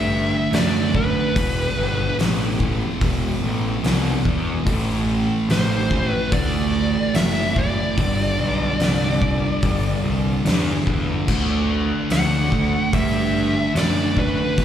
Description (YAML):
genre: stoner and doom metal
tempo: 73 BPM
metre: 4/4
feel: straight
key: unclear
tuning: A4 = 440 Hz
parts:
  - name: fuzz lead guitar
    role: melody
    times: 0.0-14.6 s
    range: B4 to F#5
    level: -25 LUFS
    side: left 1 dB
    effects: distortion, slapback echo, tape echo
  - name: thick fuzz guitar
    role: riff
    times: 0.0-14.6 s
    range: E2 to D4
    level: -22 LUFS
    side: right 1 dB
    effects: distortion, slapback echo
  - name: fuzz picked electric bass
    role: bass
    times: 0.0-14.6 s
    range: E1 to G2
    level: -23 LUFS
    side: equal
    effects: overdrive
  - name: oversized low-tuned drum kit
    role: drums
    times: 0.5-14.6 s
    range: crash cymbal, hi-hat, kick drum, snare drum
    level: -24 LUFS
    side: equal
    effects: none
room: light reverb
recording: live gig heard through the venue's PA, club reverb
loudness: -18 LUFS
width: side -10 dB against mid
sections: 0.0-14.6 A section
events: none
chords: 0.0 D; 1.4 E5; 4.7 Am; 8.0 G5; 11.3 D